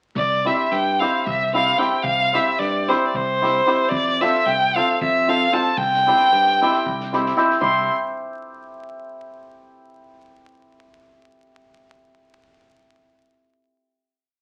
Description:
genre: balkan folk, Balkan wedding band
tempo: 226 BPM (eighths)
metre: 7/8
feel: straight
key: C major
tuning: A4 = 441 Hz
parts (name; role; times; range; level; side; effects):
- rich violin; melody; 0.2-7.9 s; C5 to C6; -21 LUFS; equal; none
- modern bright picked electric bass; bass; 0.2-7.9 s; C2 to G2; -32 LUFS; equal; none
- compact cocktail drum kit; percussion; 0.2-7.9 s; kick drum, snare drum; -39 LUFS; equal; none
- hammered dulcimer; accompaniment; 0.5-7.9 s; C4 to C5; -25 LUFS; equal; none
room: wet studio reverb, RT60 0.8 s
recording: very old 78 rpm record, vinyl crackle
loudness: -19 LUFS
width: mono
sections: 0.2-7.6 A section; 7.6-9.4 final chord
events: none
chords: 0.2 C; 3.9 F; 5.8 C

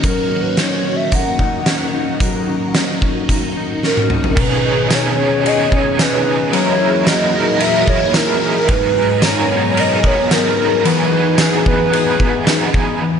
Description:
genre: dream pop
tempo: 111 BPM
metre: 4/4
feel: straight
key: B major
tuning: A4 = 439 Hz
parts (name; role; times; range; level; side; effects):
- string machine, full ensemble; sustained chords; 0.0-13.2 s; D#3 to A#5; -22 LUFS; equal; phaser, ensemble chorus, low-pass filter
- mellow electric guitar; arpeggios; 0.0-13.2 s; G#2 to A#4; -20 LUFS; left 4 dB; analog chorus, low-pass filter, ping-pong delay
- oversized low-tuned drum kit; drums; 0.0-12.9 s; crash cymbal, hi-hat, kick drum, ride cymbal, snare drum, tambourine, toms; -18 LUFS; right 1 dB; none
- warbly nostalgic lead; melody; 0.1-12.7 s; A#4 to F#5; -18 LUFS; equal; chorus, phaser, ping-pong delay
- cranked stack guitar; accompaniment; 4.4-13.0 s; G#2 to A#4; -21 LUFS; right 5 dB; overdrive, tremolo, ensemble chorus
room: moderate scoring stage reverb, RT60 1.6 s, small room ambience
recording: nothing above 10.4 kHz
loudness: -13 LUFS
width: side -7 dB against mid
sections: 0.0-4.4 A section; 4.4-13.0 B section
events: drum fill 3.8-4.4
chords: 0.0 F#6; 4.4 B69; 6.5 F#13; 8.7 G#m9; 10.9 Emaj9

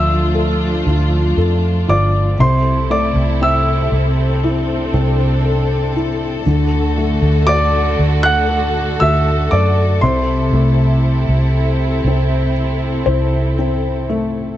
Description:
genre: pop ballad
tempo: 59 BPM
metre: 4/4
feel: straight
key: A minor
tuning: A4 = 440 Hz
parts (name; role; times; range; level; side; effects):
- warm grand piano; melody; 0.0-13.5 s; C5 to F#6; -18 LUFS; equal; tape echo
- felt-muted upright piano; accompaniment; 0.0-14.6 s; C3 to C5; -21 LUFS; left 3 dB; none
- muted studio string section; sustained chords; 0.0-14.6 s; C3 to A4; -21 LUFS; equal; none
- vintage muted fingered electric bass; bass; 0.0-14.6 s; G1 to F#2; -16 LUFS; right 1 dB; none
room: light reverb, small room ambience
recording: nothing above 8.0 kHz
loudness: -13 LUFS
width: side -13 dB against mid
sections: 0.0-14.6 A section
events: none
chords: 0.0 Dmadd9; 2.4 Am/C; 6.5 D; 10.0 Am/C

